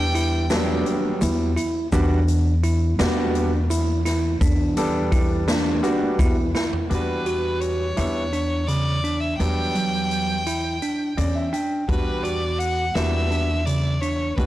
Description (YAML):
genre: progressive instrumental, band music in an uneven meter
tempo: 169 BPM (eighths)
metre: 7/8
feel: straight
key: E dorian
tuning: A4 = 440 Hz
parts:
  - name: clear violin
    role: melody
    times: 0.0-0.9, 6.9-14.5 s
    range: B4 to G5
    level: -27 LUFS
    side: left 1 dB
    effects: analog delay
  - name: bright concert grand piano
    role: accompaniment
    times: 0.0-14.5 s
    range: F#3 to G5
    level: -27 LUFS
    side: equal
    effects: none
  - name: bell-like tine electric piano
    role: arpeggios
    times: 0.0-14.3 s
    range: C#3 to F#4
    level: -26 LUFS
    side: right 2 dB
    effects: fast stereo tremolo
  - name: upright bass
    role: bass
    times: 0.0-14.5 s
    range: E2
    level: -24 LUFS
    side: equal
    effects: none
  - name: swinging big-band drum kit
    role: drums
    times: 0.2-14.5 s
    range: hi-hat, kick drum, snare drum, toms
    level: -27 LUFS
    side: equal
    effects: none
  - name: tube shaker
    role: percussion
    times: 0.5-6.7 s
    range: none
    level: -42 LUFS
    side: left 6 dB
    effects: none
room: light reverb, small room ambience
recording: blown-out, overdriven recording, overdrive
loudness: -20 LUFS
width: side -15 dB against mid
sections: 0.0-6.9 A section; 6.9-14.5 B section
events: drum fill 6.5-6.9; grand piano fill 10.8-11.9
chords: 0.0 Em7